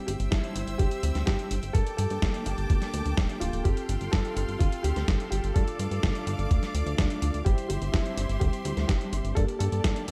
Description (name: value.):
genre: italo disco.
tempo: 126 BPM.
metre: 4/4.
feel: straight.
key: G dorian.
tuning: A4 = 440 Hz.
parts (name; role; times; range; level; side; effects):
dark baby grand piano; melody; 0.0-10.1 s; D4 to A4; -38 LUFS; equal; digital delay.
clear studio string section; sustained chords; 0.0-10.1 s; Bb3 to E6; -40 LUFS; equal; none.
chorused polysynth; stabs; 0.0-10.1 s; G3 to A4; -40 LUFS; equal; phaser.
chorused synth bass; bass; 0.1-10.1 s; D1 to G2; -32 LUFS; equal; none.
dusty soul sampler-style drum kit; drums; 0.1-10.1 s; hi-hat, snare drum; -36 LUFS; equal; gated reverb.
electronic kick drum; drums; 0.3-9.9 s; none; -28 LUFS; equal; none.
room: digital ambience.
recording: none.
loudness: -28 LUFS.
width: mono.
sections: 0.0-10.1 A section.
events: none.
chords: 0.0 C/G; 1.7 Gmadd9; 3.7 Fadd9/G; 5.6 Dm/G; 7.5 C/G; 9.4 Gmadd9.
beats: 0.32 0.79 1.27 | 1.75 2.22 2.70 3.17 | 3.65 4.13 4.60 5.08 | 5.56 6.03 6.51 6.99 | 7.46 7.94 8.41 8.89 | 9.37 9.84.